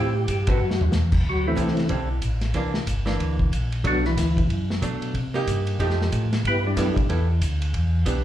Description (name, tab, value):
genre	soul jazz organ trio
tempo	185 BPM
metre	4/4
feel	swing 61% on 8ths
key	D mixolydian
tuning	A4 = 441 Hz
part	percussive tonewheel organ	melody	0.0-7.1 s	E3 to B4	-25 LUFS	left 1 dB	chorus vibrato, slow rotary speaker
part	archtop guitar, miked and amplified	accompaniment	0.0-8.2 s	D3 to B4	-28 LUFS	right 3 dB	slapback echo
part	mellow tonewheel organ	bass	0.0-8.2 s	G1 to C3	-24 LUFS	equal	slow rotary speaker
part	vintage drum kit	drums	0.3-8.2 s	crash cymbal, hi-hat, kick drum, ride cymbal, snare drum, toms	-27 LUFS	equal	none
room	light reverb, small room ambience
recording	live gig heard through the venue's PA, club reverb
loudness	-21 LUFS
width	side -12 dB against mid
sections	0.0-1.3 A section; 1.3-8.2 B section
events	band accent 0.4; drum fill 0.6-0.9; tonewheel organ solo 1.3-8.2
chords	0.0 Am7; 0.6 Esus2; 1.3 D9sus4; 2.5 C9; 3.8 Bm7; 5.1 Cm7; 5.8 F9; 6.4 G69; 7.7 Em7